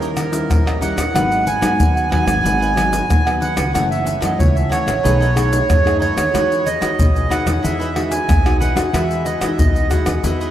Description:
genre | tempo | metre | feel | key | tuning
samba and choro | 92 BPM | 4/4 | straight | E major | A4 = 440 Hz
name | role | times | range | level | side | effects
accordion | melody | 0.0-10.5 s | A#4 to G#5 | -20 LUFS | right 3 dB | none
cavaquinho | accompaniment | 0.0-10.5 s | D#4 to F#5 | -25 LUFS | right 2 dB | none
nylon-string guitar | accompaniment | 0.0-10.5 s | F#2 to G#4 | -22 LUFS | left 2 dB | none
upright bass | bass | 0.0-10.5 s | F#1 to E3 | -22 LUFS | equal | none
egg shaker, pandeiro, tamborim and surdo | percussion | 0.0-10.5 s | none | -19 LUFS | left 1 dB | none
room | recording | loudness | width
wet cathedral reverb, RT60 5.4 s | in a vast, echoing space | -14 LUFS | side -11 dB against mid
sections
0.0-10.5 A section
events
none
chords
0.0 D#7b9; 1.1 G#m7; 3.7 F#m7; 5.0 B13; 6.3 Emaj9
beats
0.50 | 1.15 1.80 2.45 3.10 | 3.74 4.39 5.04 5.69 | 6.34 6.99 7.64 8.29 | 8.94 9.58 10.23

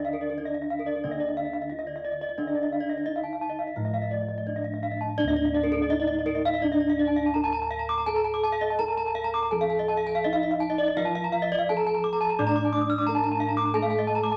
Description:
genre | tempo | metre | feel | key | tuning
gamelan | 85 BPM | 4/4 | uneven beats | D pelog | A4 = 443 Hz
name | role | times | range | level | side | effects
gamelan-type bronze metallophone | melody | 0.0-14.4 s | D4 to D5 | -31 LUFS | equal | none
gamelan-type bronze metallophone | accompaniment | 0.0-5.2, 11.0-14.4 s | D3 to D4 | -36 LUFS | equal | none
gamelan-type bronze metallophone | arpeggios | 0.0-14.3 s | A4-45c to E6+50c | -33 LUFS | equal | none
gamelan-type bronze metallophone | arpeggios | 0.0-14.4 s | D5 to D6 | -32 LUFS | equal | none
gamelan-type bossed gongs | bass | 0.0-14.4 s | D2 to A4-45c | -38 LUFS | equal | none
room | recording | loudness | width
wet small room reverb, RT60 0.6 s | none | -27 LUFS | mono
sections
0.0-5.2 A section; 5.2-14.4 B section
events
none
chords
none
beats
0.38 1.04 1.71 | 2.38 3.07 3.77 4.47 | 5.19 5.91 6.64 7.36 | 8.08 8.80 9.53 10.25 | 10.97 11.69 12.39 13.07 | 13.74

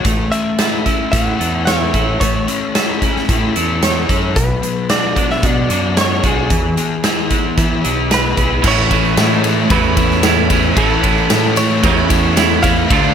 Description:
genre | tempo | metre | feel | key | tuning
rock, shoegaze and dream pop | 112 BPM | 4/4 | straight | A major | A4 = 441 Hz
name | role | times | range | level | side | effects
biting overdriven guitar | riff | 0.0-13.1 s | A2 to C#5 | -19 LUFS | right 12 dB | reverse reverb
crunchy overdriven guitar | riff | 0.0-13.1 s | A2 to C#5 | -19 LUFS | left 8 dB | analog chorus
growling fingered electric bass | bass | 0.0-13.1 s | A1 to E3 | -19 LUFS | equal | overdrive
huge arena drum kit | drums | 0.0-13.0 s | crash cymbal, hi-hat, kick drum, ride cymbal, snare drum | -17 LUFS | equal | none
direct-recorded clean electric guitar | melody | 0.3-13.1 s | G#4 to F#5 | -23 LUFS | equal | digital delay
overdriven electric guitar | riff | 8.6-13.1 s | A2 to D4 | -22 LUFS | right 1 dB | none
tambourine | percussion | 8.6-13.1 s | none | -32 LUFS | right 8 dB | none
room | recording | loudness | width
light reverb, small room ambience | none | -12 LUFS | side -8 dB against mid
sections
0.0-8.6 A section; 8.6-13.1 B section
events
none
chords
0.1 A; 4.4 Bmadd9; 6.5 E; 8.6 A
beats
| 0.05 0.59 1.13 1.67 | 2.21 2.75 3.29 3.82 | 4.36 4.90 5.43 5.97 | 6.51 7.04 7.58 8.11 | 8.64 9.18 9.71 10.24 | 10.77 11.30 11.84 12.37 | 12.90

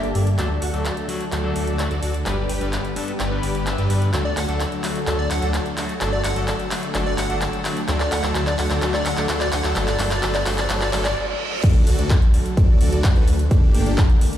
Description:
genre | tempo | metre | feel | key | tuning
EDM, festival progressive house | 128 BPM | 4/4 | straight | D major | A4 = 439 Hz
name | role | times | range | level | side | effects
lush unison pad | sustained chords | 0.0-14.4 s | D3 to G5 | -30 LUFS | left 1 dB | chorus, phaser, sidechain pumping
supersaw chords | riff | 0.0-14.1 s | Bb3 to G5 | -28 LUFS | right 1 dB | sidechain pumping, low-pass filter, tape echo
wide detuned saw bass | bass | 0.0-14.0 s | G1 to G2 | -23 LUFS | equal | chorus, sidechain pumping
big-room dance drum kit | drums | 0.0-14.4 s | crash cymbal, handclaps, hi-hat | -27 LUFS | equal | none
clean electric guitar | accompaniment | 0.4-11.0 s | G2 to E5 | -30 LUFS | left 3 dB | spring reverb, sidechain pumping, tape echo
riser, reverse cymbal and impact | sound effects | 7.8-13.5 s | none | -30 LUFS | right 1 dB | none
plucky unison lead | melody | 4.3-11.1 s | D5 to F#5 | -29 LUFS | left 1 dB | tape echo
electronic kick drum | drums | 11.6-14.1 s | none | -15 LUFS | equal | none
room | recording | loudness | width
light reverb, digital ambience | played on a big sound system in a bare room, large studio reverb | -18 LUFS | side -11 dB against mid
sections
0.0-11.6 A section; 11.6-14.4 B section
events
build-up 0.0-11.6; drum fill 0.0-11.2; reverse cymbal 10.7-11.6; stop 11.2-11.6; drop 11.6-14.4; impact 11.6-13.5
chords
0.4 D; 2.3 G; 4.1 D; 6.0 Gsus2; 7.9 D; 9.8 G; 11.6 D; 13.5 Gmadd9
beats
| 0.39 0.85 1.32 1.79 | 2.26 2.73 3.20 3.67 | 4.13 4.60 5.07 5.54 | 6.01 6.48 6.95 7.42 | 7.88 8.35 8.82 9.29 | 9.76 10.23 10.70 11.17 | 11.63 12.10 12.57 13.04 | 13.51 13.98

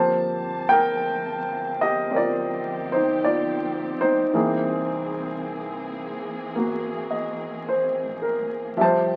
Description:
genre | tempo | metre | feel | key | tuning
jazz ballad | 54 BPM | 4/4 | swing 69% on 8ths | unclear | A4 = 440 Hz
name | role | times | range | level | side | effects
clear grand piano | accompaniment | 0.0-9.2 s | E3 to A5 | -24 LUFS | equal | none
warm symphonic string section | sustained chords | 0.0-9.2 s | E3 to A5 | -36 LUFS | equal | none
upright bass | bass | 0.0-9.2 s | E1 to D2 | -47 LUFS | equal | none
room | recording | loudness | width
wet studio ambience, RT60 0.5 s | very old 78 rpm record, vinyl crackle | -25 LUFS | mono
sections
0.0-9.2 A section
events
none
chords
0.0 Gm11; 4.3 C7alt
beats
1.00 2.12 3.23 | 4.34 5.45 6.55 7.65 | 8.76

